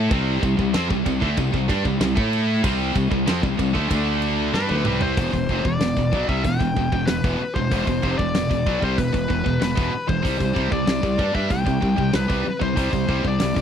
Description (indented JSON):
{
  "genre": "heavy metal",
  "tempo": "95 BPM",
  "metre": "4/4",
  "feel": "straight",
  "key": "E phrygian",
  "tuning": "A4 = 441 Hz",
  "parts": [
    { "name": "scooped high-gain guitar", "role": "riff", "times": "0.0-13.6 s", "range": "E2 to A4", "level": "-26 LUFS", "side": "left 11 dB", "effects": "distortion" },
    { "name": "scooped high-gain guitar", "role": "riff", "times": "0.0-5.2 s", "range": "C3 to A4", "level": "-29 LUFS", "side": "right 1 dB", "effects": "distortion" },
    { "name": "tight distorted guitar", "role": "riff", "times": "0.0-13.6 s", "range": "E2 to A4", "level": "-26 LUFS", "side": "right 14 dB", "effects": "distortion" },
    { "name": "fuzz fingered electric bass", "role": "bass", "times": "0.0-13.6 s", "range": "E1 to A2", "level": "-25 LUFS", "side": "equal", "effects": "overdrive" },
    { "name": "big rock drum kit", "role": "drums", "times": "0.1-13.6 s", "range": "crash cymbal, hi-hat, kick drum, snare drum, toms", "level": "-26 LUFS", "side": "equal", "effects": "none" },
    { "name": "high-gain lead guitar", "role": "melody", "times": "4.5-13.6 s", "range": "B4 to G5", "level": "-26 LUFS", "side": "left 3 dB", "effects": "distortion, slapback echo" }
  ],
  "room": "little or no reverb",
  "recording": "dry, close 1970s-style studio recording",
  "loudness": "-19 LUFS",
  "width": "side -8 dB against mid",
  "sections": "0.0-5.2 A section; 5.2-13.6 B section",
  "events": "drum fill 4.5-5.2",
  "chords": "0.0 C5; 3.9 D5; 4.5 C5; 5.2 E5; 10.2 C5",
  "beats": "| 0.11 0.74 1.37 2.01 | 2.64 3.27 3.90 4.54 | 5.17 5.80 6.44 7.07 | 7.71 8.34 8.97 9.61 | 10.24 10.88 11.51 12.14 | 12.78 13.41"
}